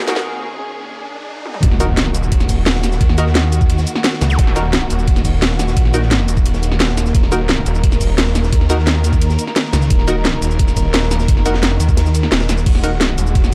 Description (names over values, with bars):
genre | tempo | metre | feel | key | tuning
dark technical drum and bass | 174 BPM | 4/4 | straight | Eb minor | A4 = 440 Hz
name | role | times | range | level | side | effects
warm studio string section | sustained chords | 0.0-13.5 s | Eb3 to Bb4 | -26 LUFS | equal | sidechain pumping
riser, impact and zap | sound effects | 0.0-4.4 s | none | -28 LUFS | equal | none
filtered dub chord stab | stabs | 0.1-12.9 s | Eb4 to Bb4 | -26 LUFS | equal | lush chorus, digital delay
crunchy breakbeat drum kit | drums | 0.1-13.4 s | hi-hat, ride cymbal, snare drum | -32 LUFS | equal | none
drum and bass drum kit | drums | 0.1-13.5 s | crash cymbal, hi-hat, shaker, snare drum, toms | -21 LUFS | equal | none
snarling distorted saw bass | bass | 1.6-13.5 s | Eb1 to Eb2 | -19 LUFS | equal | distortion, tube saturation, sidechain pumping
electronic kick drum | drums | 1.6-13.4 s | none | -17 LUFS | equal | none
room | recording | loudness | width
light reverb, small room ambience | dark, warm production, high-pass filter | -15 LUFS | mono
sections
0.0-1.6 A section; 1.6-13.5 B section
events
build-up 0.0-1.6; drum fill 0.0, 1.5; riser 0.0-1.6; break 0.2-1.6; drop 1.6-13.5; impact 1.6-3.0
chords
0.0 Eb5; 1.6 Ebm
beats
| 0.25 0.59 0.94 1.28 | 1.63 1.97 2.32 2.66 | 3.01 3.35 3.70 4.04 | 4.39 4.73 5.08 5.42 | 5.77 6.11 6.46 6.80 | 7.15 7.49 7.83 8.18 | 8.53 8.87 9.21 9.56 | 9.90 10.25 10.59 10.94 | 11.28 11.63 11.97 12.32 | 12.66 13.01 13.35